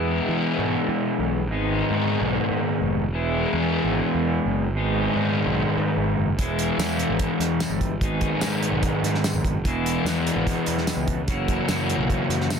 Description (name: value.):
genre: indie rock.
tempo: 147 BPM.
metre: 4/4.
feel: straight.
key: unclear.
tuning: A4 = 440 Hz.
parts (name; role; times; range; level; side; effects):
crunchy overdriven guitar; riff; 0.0-12.6 s; F#2 to E4; -25 LUFS; left 9 dB; none.
raw garage guitar; riff; 0.0-12.6 s; E2 to G#4; -26 LUFS; right 7 dB; overdrive, wide subtle chorus.
fuzz picked electric bass; bass; 0.0-12.5 s; E1 to E3; -28 LUFS; right 1 dB; overdrive.
cloth-damped thuddy drum kit; drums; 6.4-12.6 s; hi-hat, kick drum, snare drum, tambourine; -27 LUFS; equal; none.
room: light reverb, studio ambience.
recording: dense, heavily limited modern master.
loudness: -21 LUFS.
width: side -6 dB against mid.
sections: 0.0-12.6 A section.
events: none.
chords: 0.0 E; 1.5 G#m; 3.1 E; 4.8 G#m7; 6.4 E; 8.0 G#m7; 9.7 E; 11.3 F#7sus4.